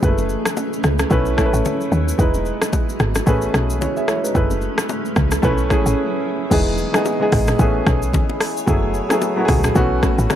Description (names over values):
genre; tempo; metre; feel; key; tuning
afrobeats; 111 BPM; 4/4; swing 58% on 16ths; E major; A4 = 440 Hz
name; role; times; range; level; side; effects
warm baby grand piano; accompaniment; 0.0-10.4 s; E3 to E5; -20 LUFS; equal; none
granular cloud pad; sustained chords; 0.0-10.4 s; E3 to B5; -26 LUFS; right 1 dB; built-in reverb
woody log drum bass; bass; 0.0-10.3 s; E1 to D#2; -20 LUFS; equal; none
afro-pop drum kit; drums; 0.0-10.4 s; crash cymbal, hi-hat, kick drum, rim click, shaker, toms; -20 LUFS; equal; none
congas and bongos; percussion; 0.0-10.4 s; none; -27 LUFS; left 2 dB; none
room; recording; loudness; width
digital ambience; dry, gritty hardware recording; -16 LUFS; side -11 dB against mid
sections
0.0-6.5 A section; 6.5-10.4 B section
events
break 6.0-6.5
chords
0.0 F#m11; 1.1 B9sus4; 2.2 Emaj7; 3.3 Amaj9; 4.4 F#m11; 5.4 B9sus4; 6.5 Emaj7; 7.6 Amaj9; 8.7 F#m11; 9.8 B9sus4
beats
| 0.03 0.57 1.11 1.65 | 2.19 2.73 3.27 3.81 | 4.35 4.89 5.43 5.97 | 6.51 7.05 7.59 8.14 | 8.68 9.22 9.76 10.30